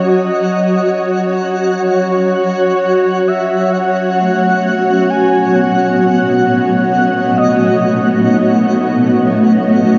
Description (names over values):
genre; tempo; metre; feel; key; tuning
ambient; 66 BPM; 4/4; straight; unclear; A4 = 440 Hz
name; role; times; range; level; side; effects
breathy flute-like synth lead; melody; 0.0-8.3 s; C#5 to G#5; -20 LUFS; equal; analog chorus, analog delay
granular cloud pad; sustained chords; 0.0-10.0 s; A3 to F#5; -15 LUFS; equal; built-in reverb, lush chorus
organ-like drone; drone; 0.0-10.0 s; F#3; -23 LUFS; equal; ensemble chorus, built-in reverb
twinkling granular texture; texture; 0.0-10.0 s; F#5; -28 LUFS; equal; built-in reverb
vibraphone with soft mallets; arpeggios; 4.2-10.0 s; A3 to C#5; -24 LUFS; equal; none
room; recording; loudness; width
wet huge ambient reverb, RT60 7.8 s; dreamy mix soaked in reverb, nothing above 7.5 kHz; -13 LUFS; mono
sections
0.0-10.0 A section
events
none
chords
0.0 F#5; 3.7 B7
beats
| 0.10 1.00 1.91 2.82 | 3.73 4.64 5.55 6.46 | 7.37 8.28 9.19